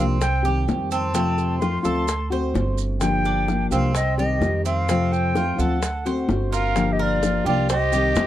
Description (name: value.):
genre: latin, Cuban son and guajira.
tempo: 128 BPM.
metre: 4/4.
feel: straight.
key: G minor.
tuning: A4 = 440 Hz.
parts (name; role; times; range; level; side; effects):
concert flute; melody; 0.0-8.3 s; D5 to C6; -25 LUFS; left 1 dB; none.
nylon-string guitar; accompaniment; 0.0-8.3 s; C3 to G4; -24 LUFS; left 4 dB; none.
Cuban tres; arpeggios; 0.0-8.3 s; C4 to C5; -28 LUFS; right 5 dB; none.
upright bass; bass; 0.0-8.3 s; G1 to F2; -24 LUFS; right 1 dB; none.
bongos; percussion; 0.2-8.3 s; none; -28 LUFS; left 4 dB; none.
maracas; percussion; 0.2-8.3 s; none; -36 LUFS; right 20 dB; none.
growling trumpet; second line; 6.5-8.3 s; F4 to Bb4; -28 LUFS; right 11 dB; none.
room: light reverb.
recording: dry, close 1970s-style studio recording.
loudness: -19 LUFS.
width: side -12 dB against mid.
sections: 0.0-6.8 A section; 6.8-8.3 B section.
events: none.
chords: 0.2 Cm; 1.2 F; 2.1 D7; 3.0 Gm7; 4.0 Cm; 4.9 F; 5.8 D7; 6.8 Gm7; 7.7 Cm.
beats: 0.22 0.69 | 1.15 1.62 2.08 2.55 | 3.02 3.48 3.95 4.42 | 4.89 5.36 5.82 6.29 | 6.76 7.22 7.69 8.16.